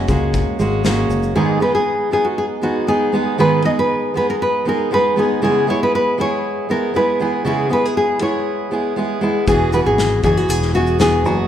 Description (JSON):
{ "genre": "acoustic pop", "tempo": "118 BPM", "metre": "4/4", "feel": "straight", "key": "unclear", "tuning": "A4 = 438 Hz", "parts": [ { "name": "fingerpicked steel-string acoustic guitar", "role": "accompaniment", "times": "0.0-11.5 s", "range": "G#2 to G#4", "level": "-18 LUFS", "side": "right 1 dB", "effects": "none" }, { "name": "fingered electric bass", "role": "bass", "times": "0.0-1.3, 9.5-11.5 s", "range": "E1 to C#2", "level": "-20 LUFS", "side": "equal", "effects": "none" }, { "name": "loose indie drum kit", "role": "drums", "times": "0.1-1.3, 9.5-11.4 s", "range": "kick drum, shaker, snare drum", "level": "-23 LUFS", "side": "left 2 dB", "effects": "none" }, { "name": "nylon-string guitar", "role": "melody", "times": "1.4-11.4 s", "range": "F#4 to D#5", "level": "-18 LUFS", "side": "left 1 dB", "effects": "none" } ], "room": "moderate scoring stage reverb, RT60 1.6 s", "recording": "recorded in a church or concert hall", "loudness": "-15 LUFS", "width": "side -10 dB against mid", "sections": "0.0-1.4 A section; 1.4-11.5 B section", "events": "none", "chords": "0.0 F#add9; 1.4 G#m; 5.4 C#m7; 9.5 Eadd9", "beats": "0.34 0.85 | 1.36 1.86 2.37 2.88 | 3.39 3.90 4.40 4.91 | 5.42 5.93 6.43 6.94 | 7.45 7.96 8.46 8.97 | 9.48 9.99 10.49 11.00" }